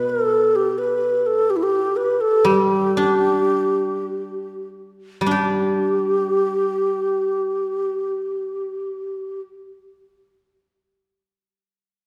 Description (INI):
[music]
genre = chinese traditional, Chinese chamber ensemble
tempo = 44-66 BPM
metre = 2/4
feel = rubato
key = G gong mode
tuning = A4 = 435 Hz
[part]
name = breathy low xiao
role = melody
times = 0.0-9.4 s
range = E4 to B4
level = -22 LUFS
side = equal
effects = none
[part]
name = guzheng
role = accompaniment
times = 0.0-11.3 s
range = B2 to G4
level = -26 LUFS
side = equal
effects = none
[sound]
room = wet concert hall reverb, RT60 1.9 s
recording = recorded in a church or concert hall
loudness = -20 LUFS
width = mono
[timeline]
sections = 0.0-5.3 A section; 5.3-10.6 B section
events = slowing down 1.0-5.3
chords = none